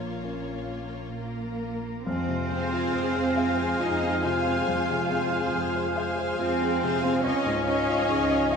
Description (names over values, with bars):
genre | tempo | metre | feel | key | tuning
cinematic | 70 BPM | 3/4 | rubato | unclear | A4 = 439 Hz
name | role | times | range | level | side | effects
rich studio violin section | melody | 0.0-8.6 s | Bb4 to F5 | -37 LUFS | left 4 dB | none
warm symphonic violin section | second line | 0.0-8.6 s | F4 to Ab5 | -36 LUFS | left 1 dB | none
clear baby grand piano | accompaniment | 0.0-8.6 s | Bb1 to Bb5 | -31 LUFS | left 2 dB | none
rich symphonic viola section | accompaniment | 0.0-8.6 s | Bb3 to Eb5 | -33 LUFS | left 2 dB | none
warm symphonic cello section | bass | 0.0-8.6 s | Bb2 to F4 | -30 LUFS | right 4 dB | none
warm symphonic double bass section | bass | 0.0-8.6 s | Bb1 to F2 | -35 LUFS | right 3 dB | none
dark clarinet | second line | 2.1-8.6 s | C5 to Eb5 | -36 LUFS | right 4 dB | none
small flute group | second line | 2.1-8.6 s | Ab5 | -34 LUFS | left 8 dB | none
warm oboe | second line | 2.1-8.6 s | F5 | -33 LUFS | equal | none
mellow French horn section | sustained chords | 2.1-8.6 s | F3 to F4 | -34 LUFS | left 3 dB | none
room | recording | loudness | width
wet scoring stage reverb, RT60 2.1 s | none | -24 LUFS | side -6 dB against mid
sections
0.0-2.1 A section; 2.1-8.6 B section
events
none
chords
0.0 Bbm; 2.1 Fm; 7.2 Dbadd9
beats
0.24 1.16 | 2.07 2.93 3.80 | 4.67 5.53 6.39 | 7.25 8.09